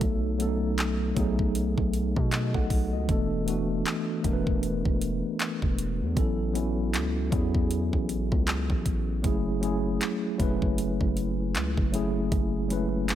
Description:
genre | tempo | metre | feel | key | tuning
contemporary R&B | 78 BPM | 4/4 | swing 58% on 16ths | F# minor | A4 = 440 Hz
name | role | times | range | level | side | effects
mellow tine electric piano | accompaniment | 0.0-13.2 s | E3 to F#5 | -28 LUFS | equal | medium stereo tremolo
long sustained 808-style bass | bass | 0.0-13.2 s | E1 to B2 | -30 LUFS | equal | none
trap drum kit | drums | 0.0-13.2 s | handclaps, hi-hat, kick drum | -28 LUFS | equal | none
room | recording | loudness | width
little or no reverb | none | -25 LUFS | side -11 dB against mid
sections
0.0-13.2 A section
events
none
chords
0.0 B7; 3.1 E7sus4; 6.2 A69; 9.2 F#m9

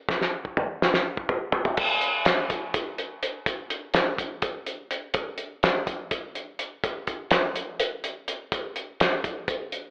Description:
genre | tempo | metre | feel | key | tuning
rock | 249 BPM (eighths) | 7/8 | straight | none | none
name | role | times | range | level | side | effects
cloth-damped thuddy drum kit | drums | 0.1-9.8 s | crash cymbal, hi-hat, kick drum, snare drum, toms | -27 LUFS | equal | none
room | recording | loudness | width
moderate plate reverb, RT60 1.4 s | telephone sound | -27 LUFS | mono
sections
0.0-1.8 A section; 1.8-9.9 B section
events
drum fill 0.1-1.8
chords
none

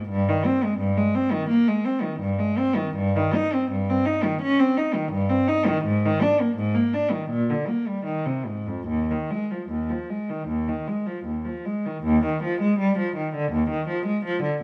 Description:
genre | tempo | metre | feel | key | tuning
classical, baroque-style suite movement for unaccompanied cello | 68-86 BPM | 4/4 | rubato | Eb major | A4 = 443 Hz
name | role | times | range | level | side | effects
rich cello | solo | 0.0-14.6 s | Eb2 to Eb4 | -24 LUFS | equal | none
room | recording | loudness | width
wet stone room reverb, RT60 1.0 s | heard from further back in the room | -24 LUFS | mono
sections
0.0-12.1 A section; 12.1-14.6 B section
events
none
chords
none

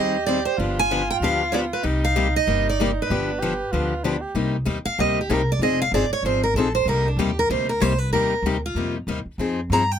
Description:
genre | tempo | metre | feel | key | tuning
acoustic string swing (jazz manouche) | 191 BPM | 4/4 | swing 61% on 8ths | C minor | A4 = 439 Hz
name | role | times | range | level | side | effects
picked steel-string acoustic guitar | melody | 0.0-10.0 s | D4 to Bb5 | -22 LUFS | right 2 dB | none
breathy soprano saxophone | second line | 0.0-4.3 s | D4 to G4 | -28 LUFS | right 3 dB | none
picked steel-string acoustic guitar | accompaniment | 0.0-9.8 s | C3 to Ab4 | -24 LUFS | left 5 dB | none
upright bass | bass | 0.0-10.0 s | F1 to G2 | -26 LUFS | equal | none
room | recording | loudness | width
little or no reverb | close, detailed microphones | -20 LUFS | side -8 dB against mid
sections
0.0-4.4 A section; 4.4-10.0 B section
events
steel-string acoustic guitar solo 4.4-10.0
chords
0.0 Abmaj7; 0.6 G7; 1.8 Cm7; 3.1 G7; 4.4 Cm9; 5.6 Fm9; 6.9 Cm9; 9.4 Fm9

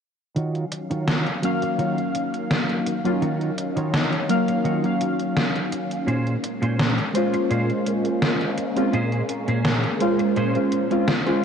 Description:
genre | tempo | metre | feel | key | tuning
vaporwave | 84 BPM | 4/4 | straight | unclear | A4 = 440 Hz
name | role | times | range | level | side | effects
soft string machine | sustained chords | 0.4-11.4 s | Eb3 to F5 | -28 LUFS | left 1 dB | phaser, ensemble chorus
clean electric guitar | riff | 0.4-10.8 s | Bb2 to Db5 | -26 LUFS | right 1 dB | ensemble chorus, low-pass filter, analog delay
gated 80s digital drum machine | drums | 0.4-11.4 s | hi-hat, snare drum | -25 LUFS | equal | gated reverb, gated reverb snare, overdrive
warbly lo-fi synth keys | accompaniment | 1.4-11.4 s | Gb3 to F5 | -23 LUFS | equal | wide subtle chorus, analog delay
room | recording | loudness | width
moderate huge ambient reverb, RT60 6.6 s | cassette tape | -20 LUFS | side -7 dB against mid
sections
0.4-11.4 A section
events
filter sweep on clean electric guitar 0.4-11.4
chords
0.4 Ebm9; 6.1 Bbm9

